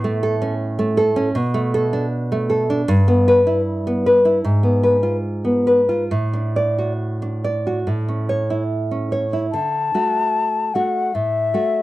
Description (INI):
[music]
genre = romantic duo for flute and classical guitar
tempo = 66-81 BPM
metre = 4/4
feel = rubato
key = D major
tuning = A4 = 437 Hz
[part]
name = nylon-string guitar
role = accompaniment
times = 0.0-11.8 s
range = G2 to D5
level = -17 LUFS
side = equal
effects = none
[part]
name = mellow hollow silver concert flute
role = melody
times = 9.5-11.8 s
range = E5 to A5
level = -19 LUFS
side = left 4 dB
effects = none
[sound]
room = light reverb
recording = dry, close 1970s-style studio recording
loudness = -17 LUFS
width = side -16 dB against mid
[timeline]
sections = 0.0-9.5 A section; 9.5-11.8 B section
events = none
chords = 0.0 A; 1.4 Bm7; 2.9 Em/G; 4.4 G#m6; 6.1 D/A; 7.9 A; 9.5 D